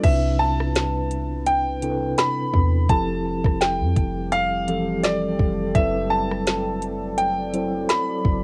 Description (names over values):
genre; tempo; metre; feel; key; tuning
contemporary R&B; 84 BPM; 4/4; swing 54% on 16ths; C major; A4 = 443 Hz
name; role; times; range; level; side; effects
clear concert grand piano; melody; 0.0-8.4 s; D5 to B5; -27 LUFS; equal; tape echo
mellow tine electric piano; accompaniment; 0.0-8.4 s; C3 to C5; -29 LUFS; equal; cassette tape
deep dark ambient pad; sustained chords; 0.5-8.4 s; C3 to D5; -35 LUFS; equal; chorus, built-in reverb, cassette tape
warm 808-style bass; bass; 0.0-8.4 s; F1 to F2; -28 LUFS; equal; none
smooth R&B drum kit; drums; 0.0-8.4 s; crash cymbal, hi-hat, kick drum, rim click, snare drum; -24 LUFS; equal; cassette tape
room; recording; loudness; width
light reverb; home recording on cassette; -22 LUFS; mono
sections
0.0-8.4 A section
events
none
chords
0.0 Cmaj7; 2.9 Fmaj9; 5.7 D13/F#